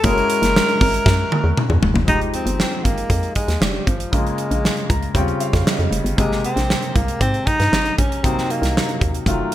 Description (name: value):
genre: polished 1980s jazz-funk pop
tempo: 117 BPM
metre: 4/4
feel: straight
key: F minor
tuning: A4 = 440 Hz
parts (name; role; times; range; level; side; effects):
- breathy alto saxophone; melody; 0.0-9.3 s; F3 to Bb4; -22 LUFS; equal; none
- clear concert grand piano; accompaniment; 0.0-9.5 s; C3 to Bb5; -24 LUFS; left 2 dB; wide subtle chorus
- hollow knocking FM bass; bass; 0.0-9.4 s; Fb1 to Ab2; -21 LUFS; equal; none
- modern studio drum kit; drums; 0.0-9.5 s; hi-hat, kick drum, snare drum, toms; -20 LUFS; right 1 dB; gated reverb
room: light reverb, small room ambience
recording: bright 1980s-style digital production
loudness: -16 LUFS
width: side -13 dB against mid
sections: 0.0-2.1 A section; 2.1-9.5 B section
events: drum fill 1.1-2.1; grand piano fill 4.6-6.2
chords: 0.0 Gb9; 2.1 Fm9; 4.1 Bbm7; 5.2 Eb13; 6.2 Abmaj9; 8.2 Cm7b5